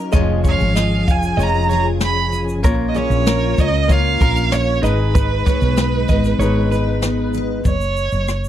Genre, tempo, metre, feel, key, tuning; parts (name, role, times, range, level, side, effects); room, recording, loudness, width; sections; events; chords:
acoustic pop; 96 BPM; 4/4; straight; A4 = 440 Hz
clear concert grand piano; accompaniment; 0.0-7.7 s; G#3 to D#5; -28 LUFS; left 10 dB
picked steel-string acoustic guitar; accompaniment; 0.0-8.2 s; G#2 to B4; -23 LUFS; left 1 dB; double-tracked left and right
percussive tonewheel organ; sustained chords; 0.0-7.6 s; E#3 to B4; -29 LUFS; left 1 dB; chorus vibrato, slow rotary speaker
direct-recorded clean electric guitar; arpeggios; 0.1-6.9 s; G#4 to E#5; -26 LUFS; right 6 dB; slapback echo
woody fretless electric bass; bass; 0.1-8.5 s; E#1 to C#2; -19 LUFS; equal
jazz brush drum kit; drums; 0.1-8.5 s; kick drum, rim click, shaker, snare drum; -18 LUFS; equal
warm violin; melody; 0.5-8.5 s; B4 to B5; -22 LUFS; right 4 dB
little or no reverb; dry, close 1970s-style studio recording; -15 LUFS; side -11 dB against mid
0.0-7.6 A section
0.1 C#/E#; 2.6 A#m; 4.8 G#m; 7.6 F#5